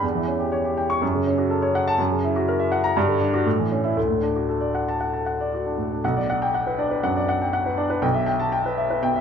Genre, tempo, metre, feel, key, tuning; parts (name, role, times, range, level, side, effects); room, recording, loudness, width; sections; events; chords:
classical, virtuoso piano study; 121 BPM; 4/4; rubato; D major, B minor from 6.0 s; A4 = 442 Hz
warm baby grand piano; solo; 0.0-9.2 s; B1 to C#6; -20 LUFS; equal
moderate recital hall reverb, RT60 1.5 s; dark, warm production; -20 LUFS; side -7 dB against mid
0.0-6.0 A section; 6.0-9.2 B section
0.0 C#dim/E; 1.0 F#m; 2.0 F#7; 3.0 G5; 3.5 A; 4.0 D; 6.0 Bm; 8.0 Em/B